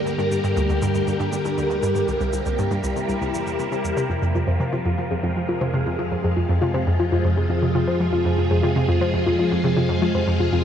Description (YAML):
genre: ambient, sequencer-driven space music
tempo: 119 BPM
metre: 4/4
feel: straight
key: F minor from 4.1 s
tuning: A4 = 442 Hz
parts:
  - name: phased string machine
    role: sustained chords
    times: 0.0-10.6 s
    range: C3 to Bb4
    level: -23 LUFS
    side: equal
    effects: ensemble chorus, phaser
  - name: analog pluck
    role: riff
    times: 0.1-10.6 s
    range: C2 to F3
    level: -23 LUFS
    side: equal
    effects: chorus, cassette tape, tape echo
  - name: cabasa and bongos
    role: percussion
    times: 0.1-4.1 s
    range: none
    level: -41 LUFS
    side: left 2 dB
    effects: tape echo
  - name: soft round pluck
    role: arpeggios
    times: 4.1-10.6 s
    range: F4 to C5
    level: -26 LUFS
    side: left 3 dB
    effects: chorus, auto-pan, cassette tape, tape echo
  - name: round analog bass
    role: bass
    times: 4.1-10.6 s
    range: F2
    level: -28 LUFS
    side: equal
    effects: none
  - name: bubbling stepped-filter texture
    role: texture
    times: 4.1-10.6 s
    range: none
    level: barely audible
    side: none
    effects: none
room: wet huge ambient reverb, RT60 8.2 s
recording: dark, warm production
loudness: -19 LUFS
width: side -9 dB against mid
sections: 0.0-4.1 A section; 4.1-10.6 B section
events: none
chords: 0.0 Gm; 2.1 C7; 4.1 Fm